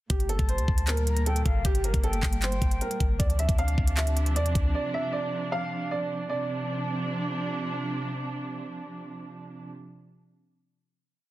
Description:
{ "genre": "hip hop, trap", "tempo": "155 BPM", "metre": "4/4", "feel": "half-time", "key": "D minor", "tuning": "A4 = 437 Hz", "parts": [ { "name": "dark baby grand piano", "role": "melody", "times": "0.1-7.4 s", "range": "G4 to F5", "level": "-32 LUFS", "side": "right 1 dB", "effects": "low-pass filter, digital delay" }, { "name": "dark symphonic string section", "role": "sustained chords", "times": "0.1-9.7 s", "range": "Bb2 to D4", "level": "-33 LUFS", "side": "right 2 dB", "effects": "none" }, { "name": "clean 808-style bass", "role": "bass", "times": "0.1-4.7 s", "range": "G1 to E2", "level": "-26 LUFS", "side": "equal", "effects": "none" }, { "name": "trap drum kit", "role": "drums", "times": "0.1-4.6 s", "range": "handclaps, hi-hat, kick drum", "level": "-27 LUFS", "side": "equal", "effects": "none" }, { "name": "mellow concert flute", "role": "second line", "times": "0.3-3.2 s", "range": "F5 to Bb5", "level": "-38 LUFS", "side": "left 4 dB", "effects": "digital delay" } ], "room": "light reverb, small room ambience", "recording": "dense, heavily limited modern master", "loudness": "-25 LUFS", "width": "side -16 dB against mid", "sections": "0.1-6.3 hook; 6.3-9.4 final chord", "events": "none", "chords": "0.1 Gmadd9; 3.2 Dm7", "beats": "| 0.10 0.49 0.88 1.26 | 1.65 2.04 2.42 2.81 | 3.20 3.58 3.97 4.36 | 4.75 5.13 5.52 5.91 | 6.29 6.68 7.07 7.46 | 7.84 8.23 8.62 9.00" }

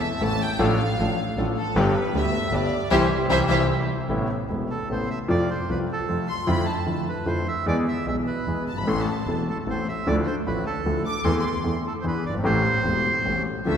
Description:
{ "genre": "tango", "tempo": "152 BPM", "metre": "3/4", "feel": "rubato", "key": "C major, A minor from 4.1 s", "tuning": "A4 = 439 Hz", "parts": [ { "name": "warm studio violin section", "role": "second line", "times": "0.0-3.6, 6.3-13.8 s", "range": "G4 to D6", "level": "-28 LUFS", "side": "left 1 dB", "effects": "none" }, { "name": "warm concert grand piano", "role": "accompaniment", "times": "0.2-13.8 s", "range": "E1 to A4", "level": "-24 LUFS", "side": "left 1 dB", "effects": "none" }, { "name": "rich studio string section", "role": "stabs", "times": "0.2-3.6, 13.7-13.8 s", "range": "C4 to C5", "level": "-32 LUFS", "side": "right 2 dB", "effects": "none" }, { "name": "bright double bass", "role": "bass", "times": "0.2-13.8 s", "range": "E1 to F2", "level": "-28 LUFS", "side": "right 1 dB", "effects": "none" }, { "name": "bandoneon", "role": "melody", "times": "4.7-13.4 s", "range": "A4 to E5", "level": "-29 LUFS", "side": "right 3 dB", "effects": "none" } ], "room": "wet church reverb, RT60 2.9 s", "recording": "recorded in a church or concert hall", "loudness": "-21 LUFS", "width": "side -8 dB against mid", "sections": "0.0-4.1 A section; 4.1-13.7 B section", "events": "violin section solo 0.0-4.1; band accent 2.9-4.1", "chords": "0.0 Am; 0.6 Dm/A; 1.8 G; 2.9 C; 4.1 Amadd9; 5.3 F; 6.5 Dmadd9/F; 7.7 E; 8.9 Am; 10.1 Dmadd9; 11.3 Am/E; 12.0 E7; 12.4 Am7", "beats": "0.21 | 0.60 0.99 1.38 | 1.76 2.15 2.53 | 2.92 3.30 3.70 | 4.10 4.50 4.90 | 5.30 5.69 6.09 | 6.48 6.87 7.27 | 7.66 8.06 8.47 | 8.87 9.28 9.68 | 10.07 10.46 10.86 | 11.25 11.65 12.05 | 12.45 12.85 13.26 | 13.67" }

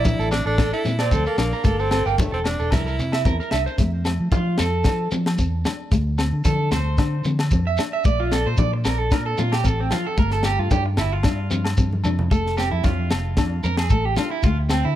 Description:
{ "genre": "highlife guitar band", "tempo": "113 BPM", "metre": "4/4", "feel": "swing 54% on 16ths", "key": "F major", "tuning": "A4 = 439 Hz", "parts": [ { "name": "edgy tenor saxophone", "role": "melody", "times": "0.0-3.5 s", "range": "A3 to E4", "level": "-27 LUFS", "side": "right 1 dB", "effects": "none" }, { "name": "fingered electric bass", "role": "bass", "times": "0.0-15.0 s", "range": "E1 to F3", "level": "-23 LUFS", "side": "equal", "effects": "none" }, { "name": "congas", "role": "percussion", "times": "0.0-14.5 s", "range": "none", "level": "-30 LUFS", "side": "left 2 dB", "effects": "none" }, { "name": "shekere", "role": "percussion", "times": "0.0-14.8 s", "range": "none", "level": "-28 LUFS", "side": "left 1 dB", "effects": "none" }, { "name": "fingerpicked steel-string acoustic guitar", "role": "accompaniment", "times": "0.1-14.9 s", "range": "A3 to D4", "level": "-29 LUFS", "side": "left 5 dB", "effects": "none" }, { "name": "tight funk drum kit", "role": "drums", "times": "0.1-14.8 s", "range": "kick drum, snare drum", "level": "-23 LUFS", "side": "equal", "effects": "none" }, { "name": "electric guitar at the edge of break-up", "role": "arpeggios", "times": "0.2-15.0 s", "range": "C4 to G5", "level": "-26 LUFS", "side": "right 3 dB", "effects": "tape echo" }, { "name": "agogo bells", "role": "percussion", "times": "0.3-14.8 s", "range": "none", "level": "-34 LUFS", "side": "left 3 dB", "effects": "none" } ], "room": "little or no reverb", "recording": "none", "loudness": "-19 LUFS", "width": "side -12 dB against mid", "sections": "0.0-3.8 A section; 3.8-15.0 B section", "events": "clean electric guitar solo 3.8-15.0; drum fill 11.8-12.3", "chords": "0.0 Bbmaj7; 1.6 Gsus2; 2.7 C7; 3.8 F; 5.9 D7(no3); 8.1 Bbmaj7; 10.2 Gsus2; 12.3 F; 14.4 D5", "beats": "0.05 0.58 1.11 | 1.65 2.18 2.72 3.25 | 3.79 4.32 4.85 5.39 | 5.92 6.45 6.99 7.52 | 8.05 8.59 9.12 9.65 | 10.18 10.71 11.24 11.78 | 12.31 12.84 13.37 13.90 | 14.44" }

